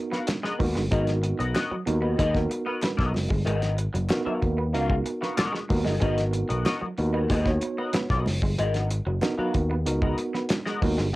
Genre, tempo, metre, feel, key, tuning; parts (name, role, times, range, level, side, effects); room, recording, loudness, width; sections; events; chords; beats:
funk; 94 BPM; 4/4; straight; G# minor; A4 = 436 Hz
tine electric piano; stabs; 0.0-11.1 s; B3 to C#5; -29 LUFS; right 2 dB; medium stereo tremolo, cassette tape
clean electric guitar; accompaniment; 0.1-11.2 s; B3 to E#5; -30 LUFS; left 3 dB; wah, ensemble chorus, cassette tape
electric guitar through a small old amp; riff; 0.1-11.1 s; F#3 to B3; -35 LUFS; right 3 dB; cassette tape
cloth-damped thuddy drum kit; drums; 0.1-11.1 s; hi-hat, kick drum, snare drum; -28 LUFS; equal
congas; percussion; 0.3-11.0 s; -37 LUFS; right 2 dB
group handclap; percussion; 0.3-10.7 s; -38 LUFS; left 2 dB
overdriven picked electric bass; bass; 0.6-11.1 s; F#1 to D#2; -26 LUFS; equal; tube saturation
light reverb; home recording on cassette; -23 LUFS; side -18 dB against mid
0.0-11.2 A section
0.0 G#m9
0.28 | 0.92 1.55 2.19 2.83 | 3.47 4.11 4.74 5.38 | 6.02 6.66 7.30 7.94 | 8.58 9.22 9.86 10.51 | 11.15